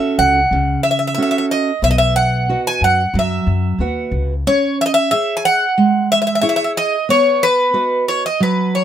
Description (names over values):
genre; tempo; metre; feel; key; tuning
greek folk, Greek bouzouki band; 91 BPM; 4/4; straight; unclear; A4 = 441 Hz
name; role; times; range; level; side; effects
Greek bouzouki; melody; 0.0-8.8 s; B4 to G#5; -15 LUFS; equal; none
fingerpicked steel-string acoustic guitar; accompaniment; 0.0-8.8 s; C#3 to F#5; -20 LUFS; right 3 dB; none
upright bass; bass; 0.2-4.4 s; B1 to F#2; -19 LUFS; left 1 dB; none
room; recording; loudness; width
light reverb; close, detailed microphones; -14 LUFS; side -10 dB against mid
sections
0.0-4.5 A section; 4.5-8.8 A section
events
none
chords
0.0 F#m; 1.8 B; 4.5 C#m; 7.1 B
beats
0.52 1.17 | 1.83 2.49 3.14 3.80 | 4.46 5.12 5.77 6.43 | 7.09 7.75 8.40